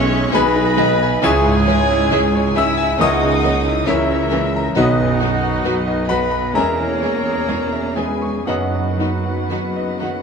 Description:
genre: classical.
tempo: 57-69 BPM.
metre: 4/4.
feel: rubato.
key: B major.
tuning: A4 = 439 Hz.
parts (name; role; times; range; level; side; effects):
clear concert grand piano; melody; 0.0-10.2 s; B1 to E6; -20 LUFS; left 3 dB; none.
rich chamber violin section; melody; 0.0-10.2 s; D#5 to E6; -30 LUFS; left 3 dB; none.
large flute ensemble; second line; 0.0-10.2 s; F#4 to G#5; -25 LUFS; equal; none.
mellow French horn section; sustained chords; 0.0-10.2 s; F#3 to E4; -28 LUFS; left 4 dB; none.
mellow trumpet section; stabs; 0.0-10.2 s; D#4 to E5; -25 LUFS; right 2 dB; none.
rich chamber double bass section; bass; 0.0-10.2 s; B1 to F#2; -24 LUFS; right 4 dB; none.
rich studio cello section; bass; 0.0-10.2 s; D#3 to E4; -26 LUFS; right 1 dB; none.
warm tuba; bass; 0.0-10.2 s; E1 to C#2; -26 LUFS; right 6 dB; none.
timpani; percussion; 0.0-6.0 s; B2; -28 LUFS; right 2 dB; none.
rich chamber violin section; second line; 0.3-10.1 s; B3 to A#4; -28 LUFS; left 2 dB; none.
rich chamber viola section; accompaniment; 0.3-10.1 s; D#3 to C#4; -26 LUFS; right 1 dB; none.
mellow clarinet; second line; 1.2-8.9 s; G#4 to C#5; -32 LUFS; left 1 dB; none.
mellow cor anglais; second line; 1.2-8.9 s; C#5 to E5; -31 LUFS; equal; none.
clear bassoon; accompaniment; 1.2-8.9 s; E3 to G#3; -30 LUFS; right 1 dB; none.
room: moderate scoring stage reverb, RT60 1.8 s.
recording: close, detailed microphones.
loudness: -15 LUFS.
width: side -6 dB against mid.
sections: 0.0-10.2 A section.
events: none.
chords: 0.0 G#m/B; 1.2 C#m; 3.0 A#dim/C#; 4.8 B; 6.5 C#m/E; 8.5 B/F#.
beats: 0.33 | 1.23 2.12 3.00 3.88 | 4.76 5.65 6.54 7.48 | 8.47 9.50.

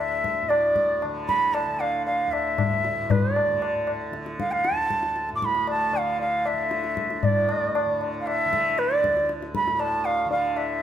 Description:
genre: indian classical, Hindustani.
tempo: 116 BPM.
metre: 4/4.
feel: straight.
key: D raga shivaranjani.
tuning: A4 = 440 Hz.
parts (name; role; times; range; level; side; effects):
bansuri; melody; 0.0-10.8 s; D5 to D6; -23 LUFS; right 1 dB; none.
tanpura; drone; 0.0-10.8 s; D2 to D3; -33 LUFS; right 1 dB; none.
tabla; percussion; 0.2-10.8 s; none; -29 LUFS; left 5 dB; none.
room: moderate recital hall reverb, RT60 1.7 s.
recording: none.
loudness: -22 LUFS.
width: side -10 dB against mid.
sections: 0.0-7.2 A section; 7.2-10.8 B section.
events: none.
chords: none.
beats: 0.50 | 1.02 1.54 2.06 2.58 | 3.10 3.62 4.13 4.65 | 5.17 5.69 6.20 6.72 | 7.23 7.75 8.26 8.78 | 9.29 9.80 10.31.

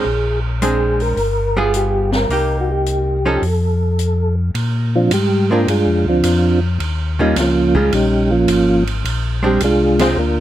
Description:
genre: soul jazz organ trio.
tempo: 107 BPM.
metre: 4/4.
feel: swing 68% on 8ths.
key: Bb mixolydian.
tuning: A4 = 440 Hz.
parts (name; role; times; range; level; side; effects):
percussive tonewheel organ; melody; 0.0-10.4 s; Eb3 to C5; -16 LUFS; right 1 dB; slow rotary speaker, chorus vibrato.
archtop guitar, miked and amplified; accompaniment; 0.0-10.2 s; Eb3 to A4; -21 LUFS; right 2 dB; none.
mellow tonewheel organ; bass; 0.0-10.4 s; G1 to Bb2; -19 LUFS; left 1 dB; slow rotary speaker.
open jazz drum kit; drums; 0.6-10.1 s; hi-hat, kick drum, ride cymbal, snare drum; -25 LUFS; right 2 dB; none.
room: light reverb.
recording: none.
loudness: -14 LUFS.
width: side -12 dB against mid.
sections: 0.0-4.6 A section; 4.6-10.4 B section.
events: tonewheel organ solo 4.6-10.4.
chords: 0.1 Bb9; 1.2 G7b9; 2.3 Cm7; 3.4 F; 4.6 Bb9; 6.8 Eb9; 9.1 Bb9.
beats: | 0.05 0.61 1.18 1.74 | 2.30 2.87 3.43 3.99 | 4.56 5.12 5.68 6.24 | 6.81 7.37 7.93 8.49 | 9.05 9.62 10.18.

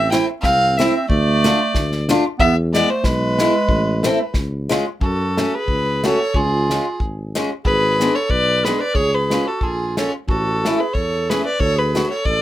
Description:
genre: alpine folk, alpine dance band.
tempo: 92 BPM.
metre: 2/4.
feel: swing 54% on 8ths, rubato.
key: A minor, F# harmonic minor from 5.0 s.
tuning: A4 = 443 Hz.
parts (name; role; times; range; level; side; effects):
clear fiddle; melody; 0.0-12.4 s; G#4 to G5; -20 LUFS; equal; none.
warm clarinet; second line; 0.0-12.4 s; G#3 to B4; -22 LUFS; right 3 dB; none.
mellow tuba; bass; 0.0-12.4 s; G#1 to F#2; -22 LUFS; equal; none.
picked old ladder-braced acoustic guitar; accompaniment; 0.1-12.1 s; G#3 to F#4; -20 LUFS; left 2 dB; none.
natural country drum kit; drums; 0.1-12.4 s; hi-hat, kick drum, snare drum; -22 LUFS; equal; none.
room: light reverb.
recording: rough home demo mix.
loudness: -16 LUFS.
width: side -14 dB against mid.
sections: 0.0-5.0 A section; 5.0-12.4 B section.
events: none.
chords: 0.0 Am; 1.1 Dm; 2.4 E; 3.7 Am; 4.3 C#; 5.0 F#m; 6.3 C#; 7.7 G#dim; 8.9 C#; 10.3 A; 11.6 D.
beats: 0.44 | 1.10 1.75 | 2.40 3.04 | 3.69 4.35 | 5.02 5.68 | 6.35 7.00 | 7.65 8.30 | 8.95 9.61 | 10.29 10.95 | 11.61 12.26.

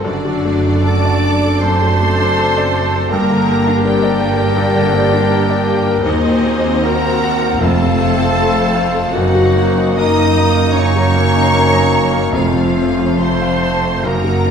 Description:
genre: classical, romantic movement for piano and orchestra.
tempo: 66-83 BPM.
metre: 4/4.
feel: rubato.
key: G minor.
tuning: A4 = 440 Hz.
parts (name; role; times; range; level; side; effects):
clear grand piano; melody; 0.0-14.5 s; Eb2 to Bb5; -18 LUFS; left 3 dB; none.
rich symphonic violin section; melody; 0.0-14.5 s; D5 to Eb6; -23 LUFS; left 2 dB; none.
mellow hollow flute section; second line; 0.0-14.5 s; A4 to Bb5; -22 LUFS; right 1 dB; none.
warm clarinet; second line; 0.0-14.5 s; Eb4 to Bb4; -26 LUFS; left 2 dB; none.
warm symphonic violin section; second line; 0.0-14.5 s; A3 to A4; -25 LUFS; left 2 dB; none.
mellow bassoon; accompaniment; 0.0-14.5 s; A3 to D4; -24 LUFS; right 1 dB; none.
rich symphonic viola section; accompaniment; 0.0-14.5 s; D4 to Eb5; -22 LUFS; right 2 dB; none.
mellow French horn section; sustained chords; 0.0-14.5 s; D3 to Eb4; -22 LUFS; left 1 dB; none.
rich symphonic cello section; bass; 0.0-14.5 s; Eb2 to G2; -20 LUFS; right 3 dB; none.
rich symphonic double bass section; bass; 0.0-14.5 s; F1 to Eb2; -21 LUFS; right 3 dB; none.
timpani; percussion; 7.6-13.6 s; F2; -24 LUFS; right 4 dB; none.
room: wet scoring stage reverb, RT60 1.7 s.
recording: minimal, uncompressed stereo recording.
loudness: -12 LUFS.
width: side -7 dB against mid.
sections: 0.0-14.5 A section.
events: none.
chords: 0.0 D7/F#; 3.1 Gm; 6.0 Cm7b5/Eb; 7.6 F; 9.1 Ebm/Gb; 12.3 F.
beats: | 0.04 0.85 1.61 2.36 | 3.11 3.83 4.56 5.28 | 6.04 6.84 7.60 8.36 | 9.13 9.97 10.75 11.53 | 12.33 13.21 14.04.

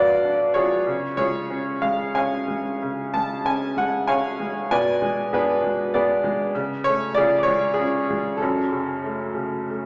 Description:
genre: classical, lyrical solo piano.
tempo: 88-101 BPM.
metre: 3/4.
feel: rubato.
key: unclear.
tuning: A4 = 435 Hz.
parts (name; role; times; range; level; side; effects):
bright upright piano; solo; 0.0-9.9 s; F#2 to A5; -23 LUFS; equal; none.
room: wet concert hall reverb, RT60 2.5 s.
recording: none.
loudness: -23 LUFS.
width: mono.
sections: 0.0-9.9 A section.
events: none.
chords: 0.0 Bm; 0.9 C#; 4.7 G#dim/B; 6.5 A/C#; 7.2 C#; 8.4 F#m.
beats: 0.23 | 0.86 1.49 2.15 | 2.81 3.46 4.09 | 4.72 5.33 5.94 | 6.54 7.16 7.78 | 8.40 9.03 9.69.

